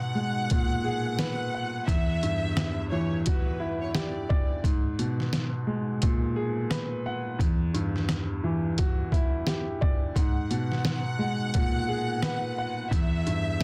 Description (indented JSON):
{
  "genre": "hip hop, boom-bap hip-hop",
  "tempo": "87 BPM",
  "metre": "4/4",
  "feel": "swing 63% on 16ths",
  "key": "unclear",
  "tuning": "A4 = 440 Hz",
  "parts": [
    { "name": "dark studio violin section", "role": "melody", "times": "0.0-4.3, 10.2-13.6 s", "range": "B4 to F#5", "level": "-36 LUFS", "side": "equal", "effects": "digital delay" },
    { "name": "dark upright piano", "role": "accompaniment", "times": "0.0-13.6 s", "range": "E2 to F#5", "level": "-31 LUFS", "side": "equal", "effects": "cassette tape" },
    { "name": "trip hop sampler-style drum kit", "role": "drums", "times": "0.5-13.6 s", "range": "hi-hat, kick drum, snare drum", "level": "-29 LUFS", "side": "equal", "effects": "none" }
  ],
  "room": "light reverb",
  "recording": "dense, heavily limited modern master",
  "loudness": "-28 LUFS",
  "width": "mono",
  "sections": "0.0-13.6 A section",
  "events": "none",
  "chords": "0.0 G#m9; 1.9 Em9; 4.6 G#m9; 7.4 Em9; 10.2 G#m9; 12.9 Em"
}